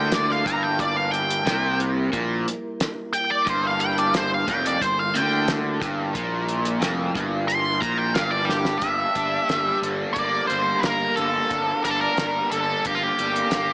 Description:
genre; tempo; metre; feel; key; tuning
psychedelic rock; 90 BPM; 4/4; straight; G dorian; A4 = 440 Hz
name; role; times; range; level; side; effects
octave-fuzz lead guitar; melody; 0.0-13.7 s; F4 to C6; -22 LUFS; equal; wah, distortion, slapback echo
percussive tonewheel organ; sustained chords; 0.0-13.7 s; G3 to A5; -34 LUFS; right 1 dB; slow rotary speaker, chorus vibrato
overdriven electric guitar; riff; 0.0-13.7 s; F2 to D4; -26 LUFS; equal; flanger
fuzz fingered electric bass; bass; 0.0-13.7 s; F1 to D2; -30 LUFS; equal; overdrive
cloth-damped thuddy drum kit; drums; 0.1-13.7 s; hi-hat, kick drum, snare drum; -28 LUFS; equal; none
room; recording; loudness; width
light reverb, small room ambience; small speaker sound; -20 LUFS; side -25 dB against mid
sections
0.0-8.8 A section; 8.8-13.7 B section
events
lead electric guitar solo 0.0-8.8; drum fill 8.5-8.8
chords
0.0 Gm

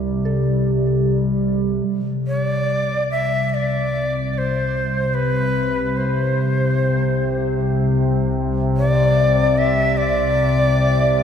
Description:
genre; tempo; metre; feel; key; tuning
ambient; free time; none; none; C major; A4 = 441 Hz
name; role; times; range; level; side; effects
warbly tape-like pad; sustained chords; 0.0-11.2 s; C3 to E5; -20 LUFS; left 1 dB; chorus, built-in reverb
soft synth bell; arpeggios; 0.0-1.9 s; D4 to A4; -35 LUFS; equal; chorus, ping-pong delay
dark studio double bass section; bass; 0.0-11.2 s; C2; -30 LUFS; equal; none
analog drone; drone; 3.2-11.2 s; C3; -24 LUFS; equal; chorus
breathy bright shakuhachi; melody; 2.3-11.2 s; B4 to E5; -20 LUFS; left 1 dB; ping-pong delay
room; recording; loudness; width
wet lush hall reverb, RT60 2.4 s; dreamy mix soaked in reverb; -17 LUFS; side -8 dB against mid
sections
0.0-1.9 A section; 1.9-11.2 A section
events
fade-in on double bass section 1.9-11.2; filter sweep on ambient pad 1.9-11.2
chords
0.0 G5/C; 1.9 C

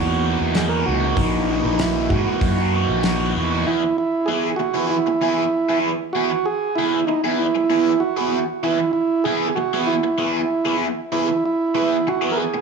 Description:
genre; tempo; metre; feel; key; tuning
psychedelic rock; 96 BPM; 4/4; straight; E lydian; A4 = 441 Hz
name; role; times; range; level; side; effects
combo organ; melody; 0.0-12.6 s; D#4 to A#4; -20 LUFS; right 4 dB; tape echo
raw garage guitar; riff; 0.0-12.6 s; E3 to G#4; -22 LUFS; equal; overdrive, phaser
fuzz fingered electric bass; bass; 0.0-3.6 s; A#1 to G#2; -22 LUFS; equal; overdrive
damped 70s drum kit; drums; 0.5-3.2 s; hi-hat, kick drum, snare drum; -24 LUFS; equal; tape echo
room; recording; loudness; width
light reverb, studio reverb; echo-heavy mix, small room reverb; -18 LUFS; side -5 dB against mid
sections
0.0-3.7 A section; 3.7-12.6 B section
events
none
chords
0.0 D#m; 3.7 E

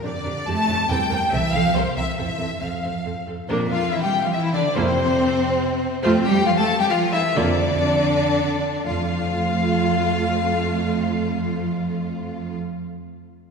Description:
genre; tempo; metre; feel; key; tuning
quick classical-period movement for string orchestra; 114-143 BPM; 3/4; straight; F major; A4 = 440 Hz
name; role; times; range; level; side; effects
dark chamber violin section; melody; 0.0-12.6 s; Bb4 to A5; -24 LUFS; left 4 dB; none
clear symphonic violin section; second line; 0.0-12.6 s; Bb3 to A5; -25 LUFS; left 2 dB; none
rich chamber viola section; accompaniment; 0.0-12.6 s; A3 to Bb4; -27 LUFS; right 3 dB; none
rich chamber cello section; bass; 0.0-12.6 s; Bb2 to A3; -26 LUFS; right 3 dB; none
rich studio double bass section; bass; 0.0-12.6 s; C2 to F2; -28 LUFS; right 2 dB; none
room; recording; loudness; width
wet concert hall reverb, RT60 2.3 s; heard from further back in the room; -19 LUFS; side -5 dB against mid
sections
0.0-3.5 A section; 3.5-8.9 B section; 8.9-12.0 C section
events
slowing down 5.4-8.9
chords
0.0 G7(no3)/F; 0.9 C7; 1.3 F; 1.8 C7; 2.2 F; 3.5 Bb/F; 4.8 C7/F; 6.0 F; 7.4 Bb/F; 8.9 F

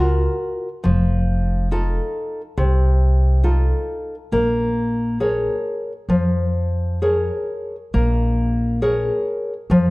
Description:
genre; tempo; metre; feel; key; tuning
fado-style ballad; 68 BPM; 4/4; rubato; Bb minor; A4 = 440 Hz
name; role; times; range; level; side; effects
nylon-string guitar; accompaniment; 0.0-9.9 s; C3 to Db5; -20 LUFS; left 1 dB; none
upright bass; bass; 0.0-9.9 s; F1 to F2; -19 LUFS; equal; none
room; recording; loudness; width
light reverb; dark, warm production; -18 LUFS; side -22 dB against mid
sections
0.0-7.9 A section; 7.9-9.9 A section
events
none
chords
0.0 Gbmaj7; 0.9 F7; 4.3 Bbm7

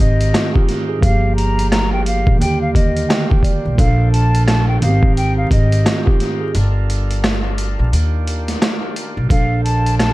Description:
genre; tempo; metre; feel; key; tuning
hip hop, boom-bap hip-hop; 87 BPM; 4/4; swing 61% on 16ths; unclear; A4 = 440 Hz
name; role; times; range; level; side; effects
breathy mellow silver concert flute; melody; 0.0-10.1 s; Eb5 to Bb5; -23 LUFS; left 1 dB; high-pass filter, low-pass filter
mellow tine electric piano; accompaniment; 0.0-10.1 s; G2 to G5; -19 LUFS; right 2 dB; cassette tape, high-pass filter, low-pass filter
overdriven tonewheel organ; sustained chords; 0.0-10.1 s; Eb3 to D5; -29 LUFS; equal; slow rotary speaker, high-pass filter, low-pass filter
upright bass; bass; 0.0-10.1 s; G1 to Eb2; -17 LUFS; equal; none
boom bap sampler-style drum kit; drums; 0.0-10.1 s; hi-hat, kick drum, rim click, snare drum; -17 LUFS; equal; none
room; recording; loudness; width
little or no reverb; dark, warm production, vinyl crackle; -13 LUFS; side -18 dB against mid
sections
0.0-10.1 A section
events
break 6.5-9.3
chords
0.0 Abmaj7; 1.0 Gm7; 2.4 Ebmaj7; 3.8 Bbmaj7; 4.8 Abmaj7; 6.5 Gm7; 7.9 Ebmaj7; 9.3 Bbmaj7

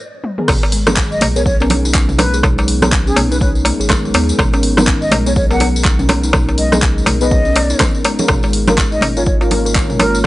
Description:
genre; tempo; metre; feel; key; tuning
afro house; 123 BPM; 4/4; swing 59% on 16ths; G# dorian; A4 = 441 Hz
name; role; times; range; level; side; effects
deep house drum kit; drums; 0.2-10.3 s; crash cymbal, handclaps, hi-hat, rim click, toms; -18 LUFS; equal; low-pass filter on toms, low-pass filter on hats, low-pass filter on snare, low-pass filter on cymbals
deep mellow chord stab; stabs; 0.4-10.3 s; B3 to C#5; -22 LUFS; left 1 dB; chorus, phaser, sidechain pumping, tape echo
dark analog pad; sustained chords; 1.2-10.3 s; G#3 to C#5; -25 LUFS; equal; chorus, sidechain pumping
warm sub bass; bass; 0.5-10.3 s; G#1 to D#2; -18 LUFS; equal; sidechain pumping
electronic kick drum; drums; 0.5-10.3 s; none; -17 LUFS; equal; none
darbuka; percussion; 0.5-10.1 s; none; -18 LUFS; left 1 dB; none
tambourine; percussion; 0.5-10.3 s; none; -27 LUFS; left 3 dB; none
kalimba; arpeggios; 0.7-10.0 s; F#3 to A#4; -21 LUFS; left 1 dB; sidechain pumping, tape echo
congas; percussion; 0.9-10.1 s; none; -19 LUFS; right 2 dB; none
breathy concert flute; melody; 1.1-10.2 s; G#4 to F#5; -22 LUFS; equal; tape echo
room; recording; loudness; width
little or no reverb; dry, gritty hardware recording, nothing above 10.5 kHz; -11 LUFS; side -17 dB against mid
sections
0.5-10.3 A section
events
break 0.0-0.5; drum fill 0.2; drop 0.5-10.3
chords
0.5 G#madd9; 8.3 A#m/G#

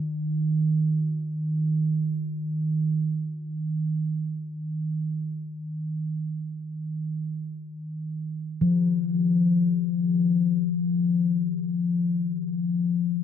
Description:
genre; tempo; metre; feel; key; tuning
world meditative, free-time meditation music; free time; none; none; unclear; A4 = 440 Hz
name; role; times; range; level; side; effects
quartz singing bowl; solo; 0.0-13.2 s; Eb3 to F3; -24 LUFS; left 2 dB; ping-pong delay
room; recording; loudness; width
light reverb, studio reverb; dark, warm production; -24 LUFS; side -8 dB against mid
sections
0.0-13.2 A section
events
none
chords
none

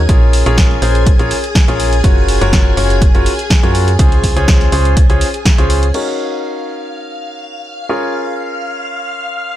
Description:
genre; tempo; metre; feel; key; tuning
piano house; 123 BPM; 4/4; swing 53% on 16ths; Eb dorian; A4 = 439 Hz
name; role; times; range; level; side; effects
string machine, violins; sustained chords; 0.0-9.6 s; Ab4 to Ab5; -23 LUFS; equal; ensemble chorus, sidechain pumping
solid FM bass; bass; 0.0-5.9 s; Gb1 to Gb2; -14 LUFS; equal; sidechain pumping
clear concert grand piano; riff; 0.1-9.6 s; Db4 to Db5; -18 LUFS; left 1 dB; sidechain pumping, low-pass filter, ping-pong delay
electronic kick drum; drums; 0.1-5.6 s; none; -12 LUFS; equal; none
punchy analog drum machine; drums; 0.1-6.0 s; crash cymbal, hi-hat, snare drum; -20 LUFS; right 1 dB; none
room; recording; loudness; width
digital ambience; none; -10 LUFS; side -13 dB against mid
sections
0.0-5.9 A section; 5.9-9.6 B section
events
filter sweep on grand piano 5.9-9.6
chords
0.1 Bbm7; 2.0 Gbmaj7; 4.0 Dbmaj7; 5.9 Ebm7; 7.9 Bbm7

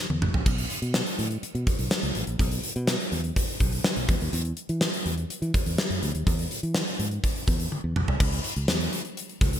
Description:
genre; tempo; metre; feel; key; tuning
1980s-style pop; 124 BPM; 4/4; straight; unclear; A4 = 440 Hz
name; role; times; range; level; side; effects
fingered electric bass; bass; 0.1-9.6 s; A1 to E3; -28 LUFS; equal; none
gated 80s drum kit; drums; 0.1-9.6 s; crash cymbal, hi-hat, kick drum, snare drum, toms; -25 LUFS; equal; gated reverb
room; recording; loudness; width
light reverb; bright 1980s-style digital production; -24 LUFS; side -10 dB against mid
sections
0.0-8.2 A section; 8.2-9.6 B section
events
drum fill 0.0-0.5, 7.7-8.2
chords
none

